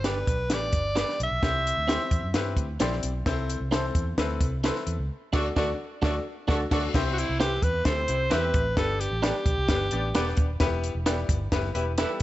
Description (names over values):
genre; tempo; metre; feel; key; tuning
uptempo 1960s-style soul; 131 BPM; 4/4; straight; unclear; A4 = 440 Hz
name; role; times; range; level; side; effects
bright alto saxophone; melody; 0.0-2.6, 7.1-10.3 s; E4 to E5; -28 LUFS; right 1 dB; none
direct-recorded clean electric guitar; stabs; 0.0-12.1 s; B3 to D5; -34 LUFS; right 4 dB; none
vintage muted fingered electric bass; bass; 0.0-12.0 s; Eb1 to G2; -30 LUFS; equal; none
compact cocktail drum kit; drums; 0.0-12.2 s; crash cymbal, hi-hat, kick drum, snare drum; -27 LUFS; equal; none
clear concert grand piano; accompaniment; 0.1-12.2 s; B3 to E5; -32 LUFS; left 4 dB; none
warm horn section; second line; 5.3-12.2 s; G3 to E5; -35 LUFS; right 1 dB; none
room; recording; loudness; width
little or no reverb; nothing above 8.0 kHz; -24 LUFS; side -15 dB against mid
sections
0.0-6.9 A section; 6.9-12.2 B section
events
band accent 5.1-6.9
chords
0.0 G; 1.4 C; 3.3 Am/C; 5.1 D; 6.9 C; 8.8 G; 10.6 Em